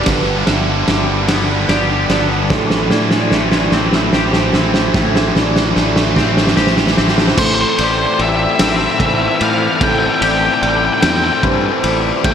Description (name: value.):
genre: post-rock.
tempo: 49 BPM (dotted quarters).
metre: 6/8.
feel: straight.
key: A minor.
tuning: A4 = 440 Hz.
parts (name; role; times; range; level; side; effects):
pedal harmonium; sustained chords; 0.0-12.3 s; E3 to G5; -26 LUFS; right 2 dB; none.
twangy electric guitar; arpeggios; 0.0-12.3 s; G2 to G4; -22 LUFS; left 3 dB; analog chorus, slapback echo, digital delay.
vibraphone with medium mallets; arpeggios; 0.0-12.3 s; A4 to E5; -25 LUFS; right 6 dB; slapback echo, digital delay.
overdriven electric guitar; riff; 0.0-12.3 s; G2 to E4; -21 LUFS; left 11 dB; phaser, slapback echo.
tight distorted guitar; riff; 0.0-7.4 s; G2 to G3; -21 LUFS; right 12 dB; distortion, slapback echo.
modern bright fingered electric bass; bass; 0.0-12.3 s; G1 to A2; -20 LUFS; right 1 dB; none.
loose indie drum kit; drums; 0.1-12.3 s; crash cymbal, kick drum, ride cymbal, snare drum; -16 LUFS; right 1 dB; none.
octave-fuzz lead guitar; melody; 7.4-12.3 s; C5 to G5; -17 LUFS; left 1 dB; distortion, slapback echo, digital delay.
room: moderate lush hall reverb, RT60 2.6 s.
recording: big arena sound.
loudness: -12 LUFS.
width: side -8 dB against mid.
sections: 0.0-7.4 A section; 7.4-12.3 B section.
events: build-up 0.0-7.4; drum fill 0.0-7.4.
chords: 0.1 G7; 2.5 Am7.